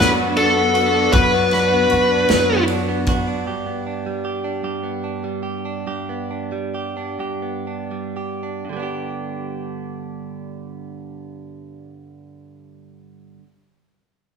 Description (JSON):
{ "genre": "six-eight pop ballad", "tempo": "37-52 BPM (dotted quarters)", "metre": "6/8", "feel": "straight", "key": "G major", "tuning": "A4 = 437 Hz", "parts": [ { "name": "high-gain lead guitar", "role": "melody", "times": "0.0-2.6 s", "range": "A4 to B4", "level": "-17 LUFS", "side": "left 1 dB", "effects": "distortion" }, { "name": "direct-recorded clean electric guitar", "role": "accompaniment", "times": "0.0-13.5 s", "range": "G2 to G4", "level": "-25 LUFS", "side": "right 3 dB", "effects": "none" }, { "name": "dark studio string section", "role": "sustained chords", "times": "0.0-3.4 s", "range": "B3 to F#4", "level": "-22 LUFS", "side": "left 2 dB", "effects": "none" }, { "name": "upright bass", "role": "bass", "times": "0.0-3.4 s", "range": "F#2", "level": "-25 LUFS", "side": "left 2 dB", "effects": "none" }, { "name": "natural country drum kit", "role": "drums", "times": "0.0-3.3 s", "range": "kick drum, ride cymbal, snare drum", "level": "-24 LUFS", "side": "equal", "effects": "none" } ], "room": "wet large studio reverb, RT60 1.2 s", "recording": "band playing live in one room", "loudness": "-18 LUFS", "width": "side -6 dB against mid", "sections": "0.0-3.5 A section; 3.5-8.7 B section; 8.7-11.9 C section", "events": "slowing down 3.5-8.7", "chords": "0.0 Bm/F#; 3.5 G" }